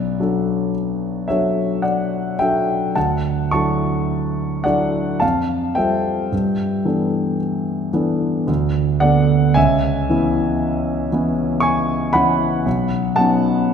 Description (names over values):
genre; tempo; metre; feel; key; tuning
classical, impressionist solo piano; 52-60 BPM; 3/4; rubato; D major; A4 = 440 Hz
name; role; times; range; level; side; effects
warm grand piano; solo; 0.0-13.7 s; B1 to C#6; -16 LUFS; equal; none
room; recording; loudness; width
moderate concert hall reverb, RT60 2.3 s; minimal, uncompressed stereo recording; -16 LUFS; side -7 dB against mid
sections
0.0-13.7 A section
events
none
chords
0.0 Bm7; 3.0 Dmaj9; 5.2 Fadd9; 6.3 G69; 8.5 D6; 9.6 C#m7; 12.7 B9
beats
0.74 1.85 | 2.96 4.10 5.22 | 6.32 7.40 8.48 | 9.56 10.61 11.63 | 12.65 13.70